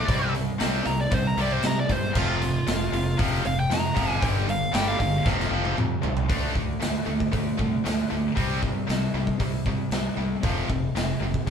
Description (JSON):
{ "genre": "hard rock", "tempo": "116 BPM", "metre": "4/4", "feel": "straight", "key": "unclear", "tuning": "A4 = 440 Hz", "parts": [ { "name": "high-gain lead guitar", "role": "melody", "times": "0.0-5.2 s", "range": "F4 to Bb5", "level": "-28 LUFS", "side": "right 1 dB", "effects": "distortion" }, { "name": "tight distorted guitar", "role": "riff", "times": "0.0-11.5 s", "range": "F2 to D4", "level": "-30 LUFS", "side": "left 6 dB", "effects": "distortion" }, { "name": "tight distorted guitar", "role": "riff", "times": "0.0-11.5 s", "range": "F2 to D4", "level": "-29 LUFS", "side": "right 5 dB", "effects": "distortion" }, { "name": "fuzz fingered electric bass", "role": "bass", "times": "0.0-11.5 s", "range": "F1 to C3", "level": "-30 LUFS", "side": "equal", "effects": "overdrive" }, { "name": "huge arena drum kit", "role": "drums", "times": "0.1-11.5 s", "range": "crash cymbal, hi-hat, kick drum, snare drum, toms", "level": "-27 LUFS", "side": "equal", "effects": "none" } ], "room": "moderate studio reverb, RT60 0.7 s", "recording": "band playing live in one room", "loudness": "-22 LUFS", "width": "side -7 dB against mid", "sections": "0.0-6.3 A section; 6.3-11.5 B section", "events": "lead electric guitar solo 0.0-6.3; drum fill 5.3-6.3", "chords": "0.1 C5; 2.2 F5; 4.2 G5; 5.3 F5; 6.3 D5; 8.4 C5; 10.4 F5", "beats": "| 0.08 0.60 1.12 1.64 | 2.15 2.67 3.19 3.70 | 4.22 4.74 5.25 5.77 | 6.29 6.81 7.32 7.84 | 8.36 8.88 9.40 9.91 | 10.43 10.95 11.47" }